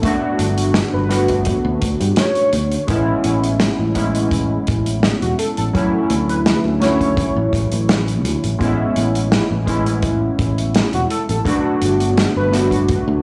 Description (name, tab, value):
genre	vaporwave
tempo	84 BPM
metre	4/4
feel	straight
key	A major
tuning	A4 = 441 Hz
part	warbly lo-fi synth keys	accompaniment	0.0-13.2 s	F#3 to F#4	-21 LUFS	equal	subtle chorus, analog delay
part	kick drum	drums	0.0-13.0 s	none	-26 LUFS	equal	none
part	loose indie drum kit	drums	0.0-13.0 s	hi-hat, snare drum	-24 LUFS	equal	none
part	fretless electric bass	bass	0.4-13.2 s	E1 to G2	-23 LUFS	equal	none
part	warm velvety synth lead	melody	0.9-12.8 s	F#4 to C#5	-26 LUFS	equal	chorus, cassette tape, tape echo
room	light reverb, studio reverb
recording	dry, gritty hardware recording, small room ambience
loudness	-17 LUFS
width	mono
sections	0.0-13.2 A section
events	none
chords	0.0 Gmaj9; 2.9 Amaj7; 5.7 Dmaj9; 8.6 Amaj7; 11.5 Gmaj9